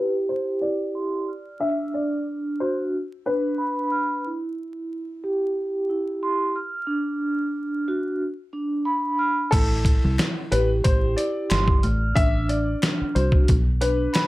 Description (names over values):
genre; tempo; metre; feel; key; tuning
hip hop, boom-bap hip-hop; 91 BPM; 4/4; swing 56% on 16ths; A minor; A4 = 440 Hz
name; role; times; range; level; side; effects
warm upright piano; melody; 0.0-4.2, 9.5-14.3 s; A4 to E5; -27 LUFS; left 2 dB; high-pass filter, low-pass filter, slapback echo
vibraphone with soft mallets; accompaniment; 0.0-14.3 s; D4 to F6; -25 LUFS; right 1 dB; cassette tape, high-pass filter, low-pass filter
deep dub fingered electric bass; bass; 9.5-14.1 s; G1 to C2; -23 LUFS; equal; none
trip hop sampler-style drum kit; drums; 9.5-14.3 s; crash cymbal, hi-hat, kick drum, snare drum; -21 LUFS; equal; none
finger snaps; percussion; 10.2-14.3 s; none; -40 LUFS; left 4 dB; none
room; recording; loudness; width
light reverb; vinyl crackle; -21 LUFS; side -18 dB against mid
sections
0.0-9.5 A section; 9.5-14.3 B section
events
filter sweep 0.0-9.5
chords
0.0 Am7 (rootless); 1.3 D; 2.9 Bm; 4.2 Em; 6.6 D; 8.2 Bm; 9.5 Am7; 11.8 D/A; 13.5 Bm